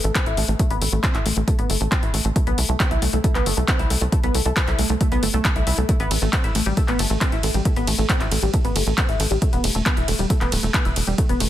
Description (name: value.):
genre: uplifting trance.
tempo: 136 BPM.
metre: 4/4.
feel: straight.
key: A minor.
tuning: A4 = 438 Hz.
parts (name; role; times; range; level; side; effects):
tight sequenced synth; arpeggios; 0.0-11.5 s; G3 to E4; -25 LUFS; left 1 dB; chorus, phaser, sidechain pumping, digital delay.
tight sequencer bass; bass; 0.0-11.5 s; D1 to C2; -22 LUFS; equal; sidechain pumping.
punchy analog drum machine; drums; 0.0-11.5 s; handclaps, hi-hat, ride cymbal; -25 LUFS; left 1 dB; none.
electronic kick drum; drums; 0.2-11.3 s; none; -22 LUFS; equal; none.
room: little or no reverb.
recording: dense, heavily limited modern master.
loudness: -18 LUFS.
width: side -12 dB against mid.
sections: 0.0-11.5 A section.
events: none.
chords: 0.0 Am; 9.4 Em.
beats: 0.15 | 0.59 1.03 1.48 1.92 | 2.36 2.80 3.24 3.68 | 4.12 4.57 5.01 5.45 | 5.89 6.33 6.77 7.21 | 7.65 8.09 8.54 8.98 | 9.42 9.86 10.30 10.74 | 11.18.